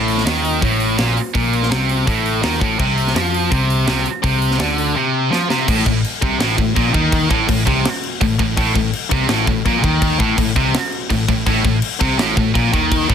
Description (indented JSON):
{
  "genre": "heavy metal",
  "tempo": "166 BPM",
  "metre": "4/4",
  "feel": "straight",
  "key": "A minor",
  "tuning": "A4 = 441 Hz",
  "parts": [
    { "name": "crunchy overdriven guitar", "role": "riff", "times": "0.0-13.1 s", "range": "A2 to F3", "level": "-22 LUFS", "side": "left 1 dB", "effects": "none" },
    { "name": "heavy high-gain guitar", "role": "riff", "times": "0.0-13.1 s", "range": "A2 to F3", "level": "-20 LUFS", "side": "right 11 dB", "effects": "distortion" },
    { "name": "tight distorted guitar", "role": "riff", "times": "0.0-13.1 s", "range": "A2 to F3", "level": "-22 LUFS", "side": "left 12 dB", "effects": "distortion" },
    { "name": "picked electric bass", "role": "bass", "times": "0.0-13.1 s", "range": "A1 to F2", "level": "-22 LUFS", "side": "equal", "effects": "none" },
    { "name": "tight metal drum kit", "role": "drums", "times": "0.1-13.1 s", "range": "crash cymbal, hi-hat, kick drum, snare drum", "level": "-20 LUFS", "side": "equal", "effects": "none" }
  ],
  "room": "little or no reverb",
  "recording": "dense, heavily limited modern master",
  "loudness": "-14 LUFS",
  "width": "side -8 dB against mid",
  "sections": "0.0-5.7 A section; 5.7-13.1 B section",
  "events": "drum fill 5.3-5.7; half time 5.7-13.1",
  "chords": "0.0 Am; 2.8 Csus24; 5.7 Am",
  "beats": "0.26 0.62 0.98 | 1.34 1.71 2.07 2.43 | 2.79 3.15 3.51 3.87 | 4.24 4.60 4.96 5.32 | 5.68 6.04 6.40 6.76 | 7.12 7.49 7.85 8.21 | 8.57 8.93 9.29 9.65 | 10.01 10.38 10.74 11.10 | 11.46 11.82 12.19 12.55 | 12.91"
}